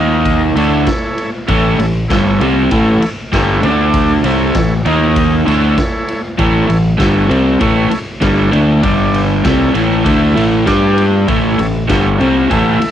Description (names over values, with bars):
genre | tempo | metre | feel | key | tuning
garage rock duo or trio | 98 BPM | 4/4 | straight | A mixolydian | A4 = 444 Hz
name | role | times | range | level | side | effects
combo organ | sustained chords | 0.0-12.9 s | D4 to E5 | -20 LUFS | equal | cassette tape
crunchy overdriven guitar | riff | 0.0-12.8 s | G2 to G4 | -12 LUFS | equal | cassette tape
growling fingered electric bass | bass | 0.0-12.8 s | G1 to G2 | -17 LUFS | equal | overdrive
raw garage drum kit | drums | 0.3-12.9 s | kick drum, ride cymbal, snare drum | -20 LUFS | equal | cassette tape
room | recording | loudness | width
light reverb | home recording on cassette | -10 LUFS | side -10 dB against mid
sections
0.0-12.9 A section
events
none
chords
0.0 D#5; 0.6 A; 3.6 D5; 4.2 A; 4.9 D#5; 5.5 A; 8.8 G5; 9.4 A; 10.7 G5; 11.3 A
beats
0.25 0.87 | 1.48 2.10 2.71 3.33 | 3.94 4.55 5.16 5.78 | 6.39 7.00 7.61 8.22 | 8.84 9.45 10.06 10.67 | 11.29 11.90 12.51